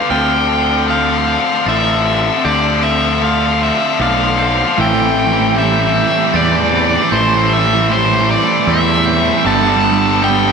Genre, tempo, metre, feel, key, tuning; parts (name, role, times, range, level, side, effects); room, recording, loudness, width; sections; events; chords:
post-rock; 77 BPM; 3/4; straight; A minor; A4 = 442 Hz
overdriven electric guitar; melody; 0.0-10.5 s; C5 to A5; -16 LUFS; right 1 dB; analog delay
pedal steel guitar; sustained chords; 0.0-10.5 s; C4 to E5; -27 LUFS; right 1 dB; lush chorus
glockenspiel with soft plastic mallets; arpeggios; 0.0-10.5 s; C6 to F7; -23 LUFS; right 5 dB; analog delay
twelve-string electric guitar; arpeggios; 0.0-10.5 s; G2 to C4; -23 LUFS; equal; ensemble chorus, analog delay
distorted electric guitar; riff; 0.0-10.5 s; G2 to B3; -17 LUFS; left 10 dB; overdrive
fuzz picked electric bass; bass; 0.1-10.5 s; G1 to E2; -19 LUFS; equal; overdrive
sludgy distorted guitar; riff; 4.8-10.5 s; A2 to B3; -18 LUFS; right 12 dB; overdrive
wet lush hall reverb, RT60 1.8 s; dreamy mix soaked in reverb; -11 LUFS; side -5 dB against mid
0.0-10.5 A section
build-up 0.0-10.5
0.1 Dm7; 4.8 Am7; 9.4 Em7/G